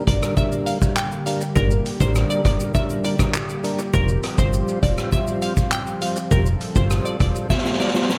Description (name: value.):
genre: dancehall.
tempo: 101 BPM.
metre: 4/4.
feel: straight.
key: F major.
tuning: A4 = 440 Hz.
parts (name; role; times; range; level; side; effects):
mellow tonewheel organ; accompaniment; 0.0-8.1 s; G3 to C5; -29 LUFS; equal; overdrive, chorus vibrato, slow rotary speaker, sidechain pumping.
warm analog pad; sustained chords; 0.0-8.2 s; D3 to A4; -32 LUFS; equal; chorus, sidechain pumping.
glassy wavetable pluck; melody; 0.1-7.9 s; Bb4 to G5; -30 LUFS; equal; chorus, dub echo.
plucky analog bass; bass; 0.1-7.3 s; F1 to A1; -23 LUFS; equal; none.
street-band drum kit; drums; 0.1-8.2 s; handclaps, hi-hat, kick drum, rim click, shaker, snare drum; -24 LUFS; equal; none.
tube shaker and timbales; percussion; 0.1-8.2 s; none; -44 LUFS; equal; none.
room: light reverb, small room ambience.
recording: echo-heavy mix.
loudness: -21 LUFS.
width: mono.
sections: 0.0-8.2 A section.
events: drum fill 7.5-8.2.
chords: 0.0 Gm; 3.9 Fsus2.